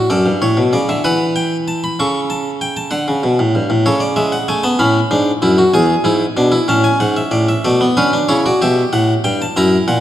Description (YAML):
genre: classical, baroque-style 3-part fugue for harpsichord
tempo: 64 BPM (dotted quarters)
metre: 6/8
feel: straight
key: D major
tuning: A4 = 442 Hz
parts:
  - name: harpsichord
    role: solo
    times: 0.0-10.0 s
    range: E2 to C#6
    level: -12 LUFS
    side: equal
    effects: none
room: wet scoring stage reverb, RT60 2.0 s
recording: none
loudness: -13 LUFS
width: side -12 dB against mid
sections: 0.1-7.6 A section; 7.6-10.0 B section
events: none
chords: 0.1 D/F#; 1.0 Em; 2.0 A7/C#; 2.9 D; 3.8 A/C#; 4.8 Bm7; 5.7 E7; 6.7 A; 7.6 Bm; 8.6 Gmaj13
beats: | 0.09 1.04 | 1.98 2.91 | 3.84 4.78 | 5.72 6.67 | 7.63 8.59 | 9.55